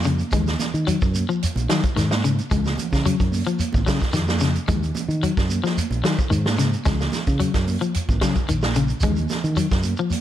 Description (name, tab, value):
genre	afrobeat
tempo	110 BPM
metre	4/4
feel	straight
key	Eb minor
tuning	A4 = 441 Hz
part	fingered electric bass	bass	0.0-9.9 s	Ab1 to Eb3	-23 LUFS	right 1 dB	none
part	shekere	percussion	0.0-10.2 s	none	-29 LUFS	right 2 dB	none
part	electric guitar at the edge of break-up	arpeggios	0.1-10.1 s	Db3 to Ab3	-25 LUFS	left 5 dB	none
part	vintage drum kit	drums	0.1-10.2 s	hi-hat, kick drum, snare drum	-24 LUFS	right 1 dB	none
part	congas	percussion	0.1-10.2 s	none	-30 LUFS	right 6 dB	none
room	little or no reverb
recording	none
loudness	-19 LUFS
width	side -11 dB against mid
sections	0.0-10.2 A section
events	none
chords	0.3 Ebm; 2.5 Dbsus4; 4.7 Ebm; 6.9 Dbsus4; 9.0 Ebm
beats	| 0.33 0.87 1.42 1.96 | 2.51 3.05 3.60 4.14 | 4.68 5.23 5.77 6.31 | 6.86 7.40 7.94 8.48 | 9.03 9.57 10.11